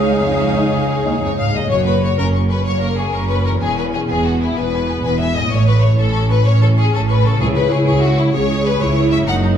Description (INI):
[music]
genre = cinematic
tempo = 127 BPM (dotted quarters)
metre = 12/8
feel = straight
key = unclear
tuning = A4 = 440 Hz
[part]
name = warm symphonic violin section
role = melody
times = 0.0-9.5 s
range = F5 to C#6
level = -30 LUFS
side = left 3 dB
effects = none
[part]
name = mellow clarinet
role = second line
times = 0.0-1.5 s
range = Ab4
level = -29 LUFS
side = left 4 dB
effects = none
[part]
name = rich studio violin section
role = second line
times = 0.0-9.4 s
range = E4 to F#5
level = -20 LUFS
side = left 4 dB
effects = none
[part]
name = warm oboe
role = second line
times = 0.0-1.5 s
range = Eb5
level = -29 LUFS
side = left 3 dB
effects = none
[part]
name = rich symphonic viola section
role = accompaniment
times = 0.0-9.6 s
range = Ab3 to G#4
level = -23 LUFS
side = right 2 dB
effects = none
[part]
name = concert harp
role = arpeggios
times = 0.0-9.6 s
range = E2 to C#5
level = -24 LUFS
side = left 4 dB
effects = none
[part]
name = rich symphonic cello section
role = bass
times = 0.0-9.6 s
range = Db2 to C#3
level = -19 LUFS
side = right 2 dB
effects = none
[part]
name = warm symphonic double bass section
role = bass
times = 0.0-9.6 s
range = E1 to Db2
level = -21 LUFS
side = right 2 dB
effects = none
[part]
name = mellow French horn section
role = sustained chords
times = 0.1-1.6 s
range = Ab3 to Eb4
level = -26 LUFS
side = left 2 dB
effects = none
[part]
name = timpani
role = percussion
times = 1.7-2.2, 7.4-7.8 s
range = F#2 to C#3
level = -24 LUFS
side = equal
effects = none
[sound]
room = wet recital hall reverb, RT60 1.3 s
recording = heard from further back in the room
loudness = -14 LUFS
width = side -9 dB against mid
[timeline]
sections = 0.0-1.7 A section; 1.7-9.6 B section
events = none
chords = 0.0 Dbadd9; 1.7 F#; 3.6 E; 5.5 A; 7.4 C#m